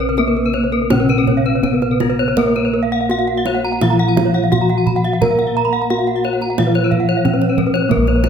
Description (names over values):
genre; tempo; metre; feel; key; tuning
Balinese gamelan; 82-92 BPM; 4/4; straight; Bb pelog; A4 = 442 Hz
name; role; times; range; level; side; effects
gamelan-type bronze metallophone; melody; 0.0-8.3 s; Bb3 to Bb4; -18 LUFS; equal; none
gamelan-type bronze metallophone; accompaniment; 0.0-8.3 s; C3+50c to Bb3; -22 LUFS; left 1 dB; none
gamelan-type bronze metallophone; arpeggios; 0.0-8.3 s; Gb4-40c to Cb6; -22 LUFS; left 6 dB; none
gamelan-type bossed gongs; bass; 0.0-8.3 s; Bb1 to Bb4; -20 LUFS; left 1 dB; none
gamelan-type bronze metallophone; arpeggios; 0.1-8.2 s; Bb4 to Cb6; -23 LUFS; right 7 dB; none
kendang; percussion; 0.2-8.3 s; none; -23 LUFS; right 5 dB; none
room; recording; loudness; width
moderate concert hall reverb, RT60 1.8 s; none; -13 LUFS; side -7 dB against mid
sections
0.0-7.9 A section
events
none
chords
none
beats
0.18 0.91 1.65 | 2.38 3.10 3.82 4.52 | 5.22 5.91 6.58 7.25 | 7.91